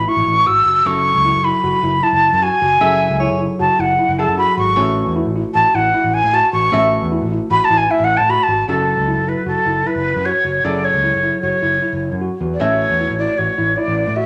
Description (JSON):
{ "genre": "progressive instrumental, progressive", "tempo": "153 BPM", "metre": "5/4", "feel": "straight", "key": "F# minor", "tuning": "A4 = 440 Hz", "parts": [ { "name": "breathy jazz flute", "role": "melody", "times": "0.0-14.3 s", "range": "A4 to E6", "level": "-17 LUFS", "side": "equal", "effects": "none" }, { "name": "archtop guitar, miked and amplified", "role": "accompaniment", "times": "0.0-14.3 s", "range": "F#3 to E5", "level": "-26 LUFS", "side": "equal", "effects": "none" }, { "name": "overdriven fingered electric bass", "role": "bass", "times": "0.0-14.2 s", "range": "F#1 to A2", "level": "-25 LUFS", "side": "equal", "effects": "none" }, { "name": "tine electric piano", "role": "arpeggios", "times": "0.1-14.3 s", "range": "C#4 to F#4", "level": "-26 LUFS", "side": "equal", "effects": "none" }, { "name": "bright alto saxophone", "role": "second line", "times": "2.8-3.5 s", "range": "C#5 to E5", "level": "-22 LUFS", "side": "equal", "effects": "none" } ], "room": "moderate large studio reverb, RT60 0.9 s", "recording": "none", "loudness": "-16 LUFS", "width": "mono", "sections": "0.0-8.7 A section; 8.7-14.3 B section", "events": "flute solo 0.0-8.7", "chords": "0.0 F#m9; 4.8 A6; 8.7 F#m9; 12.6 A6", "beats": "0.07 0.47 | 0.86 1.25 1.64 2.03 2.42 | 2.81 3.21 3.60 3.99 4.38 | 4.77 5.16 5.55 5.95 6.34 | 6.73 7.12 7.51 7.90 8.29 | 8.69 9.08 9.47 9.86 10.25 | 10.64 11.04 11.43 11.82 12.21 | 12.60 12.99 13.39 13.78 14.17" }